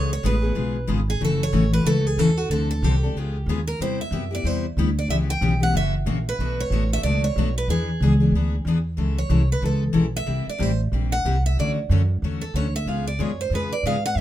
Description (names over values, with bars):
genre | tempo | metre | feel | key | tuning
acoustic string swing (jazz manouche) | 185 BPM | 4/4 | swing 60% on 8ths | unclear | A4 = 440 Hz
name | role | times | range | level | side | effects
picked steel-string acoustic guitar | melody | 0.0-14.2 s | F#4 to G5 | -27 LUFS | right 3 dB | none
picked steel-string acoustic guitar | accompaniment | 0.0-14.2 s | B2 to A4 | -25 LUFS | left 4 dB | none
upright bass | bass | 0.0-14.2 s | F#1 to G#2 | -22 LUFS | equal | none
room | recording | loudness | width
light reverb | minimal, uncompressed stereo recording | -20 LUFS | side -13 dB against mid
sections
0.0-9.0 A section; 9.0-14.2 B section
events
steel-string acoustic guitar solo 9.0-14.2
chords
0.0 C#7; 1.2 F#m7; 2.5 Dm7; 3.2 C#9; 3.8 Cmaj7; 5.1 C#m7b5; 5.7 F#7; 6.4 Bm7; 7.7 E7; 9.0 Amaj7; 10.3 C7; 11.6 Dmaj7; 12.9 C#7